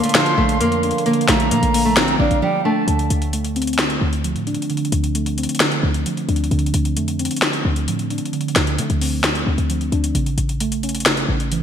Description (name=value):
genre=hip hop, trap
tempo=132 BPM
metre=4/4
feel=half-time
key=D minor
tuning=A4 = 440 Hz
part: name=nylon-string guitar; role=melody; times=0.0-2.8 s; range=F3 to D4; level=-20 LUFS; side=right 1 dB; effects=digital delay
part: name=silver concert flute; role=second line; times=0.0-2.9 s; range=F5 to C6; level=-24 LUFS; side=right 2 dB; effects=digital delay
part: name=muted felt-like synth keys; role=accompaniment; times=0.0-11.6 s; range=C#3 to A4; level=-22 LUFS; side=right 2 dB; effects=chorus
part: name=dark analog pad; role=sustained chords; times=0.0-2.8 s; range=Bb3 to F5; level=-29 LUFS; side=equal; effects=chorus
part: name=trap drum kit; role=drums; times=0.0-11.6 s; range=hi-hat, snare drum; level=-21 LUFS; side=left 1 dB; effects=gated reverb
part: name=short 808-style bass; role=bass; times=0.4-11.6 s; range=A1 to D3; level=-22 LUFS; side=left 1 dB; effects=none
room=moderate lush hall reverb, RT60 1.9 s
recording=bright 1980s-style digital production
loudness=-16 LUFS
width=side -8 dB against mid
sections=0.0-2.9 A section; 2.9-11.6 B section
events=break 2.4-2.9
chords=0.0 Bbmaj7; 2.9 Dm7; 10.2 A